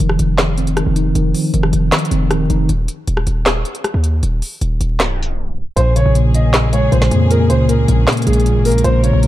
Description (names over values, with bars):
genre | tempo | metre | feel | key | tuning
hip hop, trap | 156 BPM | 4/4 | half-time | Bb minor | A4 = 439 Hz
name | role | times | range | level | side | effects
mellow tine electric piano | accompaniment | 0.0-2.7, 5.8-9.3 s | Bb2 to Eb4 | -16 LUFS | equal | medium stereo tremolo
hard-hitting 808-style bass | bass | 0.0-9.3 s | Eb1 to F2 | -16 LUFS | equal | none
trap drum kit | drums | 0.0-9.3 s | handclaps, hi-hat, rim click, snare drum | -20 LUFS | equal | none
dark concert grand piano | melody | 5.8-9.2 s | Ab4 to Eb5 | -19 LUFS | equal | none
rich symphonic string section | sustained chords | 5.8-9.3 s | Db3 to Bb4 | -24 LUFS | right 1 dB | none
room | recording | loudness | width
light reverb, small room ambience | dark, warm production, vinyl crackle, tape stop | -13 LUFS | side -14 dB against mid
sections
0.0-5.8 A section; 5.8-9.3 B section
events
break 2.7-5.8; tape stop 5.0-5.8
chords
0.0 F5; 2.7 N.C.; 5.8 Bbm7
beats
0.00 0.38 0.77 | 1.15 1.54 1.92 2.31 | 2.69 3.08 3.46 3.85 | 4.23 4.61 5.00 5.38 | 5.77 6.15 6.54 6.92 | 7.31 7.69 8.08 8.46 | 8.85 9.23